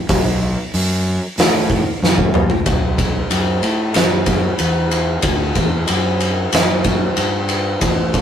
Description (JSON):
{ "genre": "stoner and doom metal", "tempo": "93 BPM", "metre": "4/4", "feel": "straight", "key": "B minor", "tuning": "A4 = 440 Hz", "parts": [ { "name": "fuzz fingered electric bass", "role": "bass", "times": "0.1-8.2 s", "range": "A1 to A2", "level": "-19 LUFS", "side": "equal", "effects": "overdrive" }, { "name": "oversized low-tuned drum kit", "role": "drums", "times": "0.1-8.2 s", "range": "hi-hat, kick drum, ride cymbal, snare drum, toms", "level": "-16 LUFS", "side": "equal", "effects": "none" } ], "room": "little or no reverb", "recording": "rough rehearsal-room recording", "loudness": "-14 LUFS", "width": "side -9 dB against mid", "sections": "0.0-2.7 A section; 2.7-8.2 B section", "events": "drum fill 2.0-2.7", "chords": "none" }